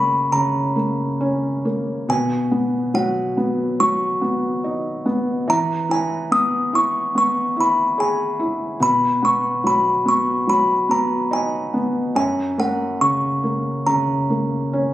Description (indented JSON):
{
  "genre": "children's music, lullaby",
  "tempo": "71 BPM",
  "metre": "4/4",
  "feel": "rubato",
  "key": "B major",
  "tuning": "A4 = 439 Hz",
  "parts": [
    { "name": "music box", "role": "melody", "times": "0.0-14.9 s", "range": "F#5 to D#6", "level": "-20 LUFS", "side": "equal", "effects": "none" },
    { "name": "felt-muted upright piano", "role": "accompaniment", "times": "0.0-14.9 s", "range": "F#2 to G#4", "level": "-21 LUFS", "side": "equal", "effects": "none" }
  ],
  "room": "moderate recital hall reverb, RT60 1.4 s",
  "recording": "recorded on a phone in the room, club reverb",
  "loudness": "-18 LUFS",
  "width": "side -14 dB against mid",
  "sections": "0.0-2.1 A section; 2.1-14.9 A section",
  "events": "none",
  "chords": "0.0 F#; 2.1 B; 5.5 E; 8.8 B; 12.2 F#",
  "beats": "0.32 1.21 | 2.09 2.95 3.80 4.65 | 5.49 6.33 7.17 7.99 | 8.81 9.64 10.47 11.31 | 12.16 13.00 13.85 14.72"
}